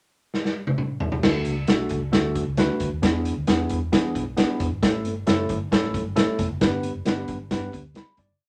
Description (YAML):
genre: uptempo 1960s-style soul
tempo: 134 BPM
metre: 4/4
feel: straight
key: D major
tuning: A4 = 440 Hz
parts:
  - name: vintage drum kit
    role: drums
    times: 0.3-8.3 s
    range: crash cymbal, hi-hat, kick drum, snare drum, toms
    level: -25 LUFS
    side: equal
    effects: none
  - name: tine electric piano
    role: accompaniment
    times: 1.2-8.5 s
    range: A3 to B5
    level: -29 LUFS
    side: equal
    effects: none
  - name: vintage muted fingered electric bass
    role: bass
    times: 1.2-8.4 s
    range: F1 to E3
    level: -33 LUFS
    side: equal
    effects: none
  - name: congas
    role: percussion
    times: 4.8-8.3 s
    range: none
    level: -39 LUFS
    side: equal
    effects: none
room: light reverb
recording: none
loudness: -24 LUFS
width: mono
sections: 0.0-1.2 pickup bar; 1.2-8.4 verse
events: drum fill 0.3-1.2; fade-out 6.6-8.4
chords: 0.0 N.C.; 1.2 D; 3.0 E7; 4.8 A; 6.6 G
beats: 0.34 0.79 | 1.24 1.69 2.14 2.58 | 3.03 3.48 3.93 4.38 | 4.83 5.27 5.72 6.17 | 6.62 7.06 7.51 7.96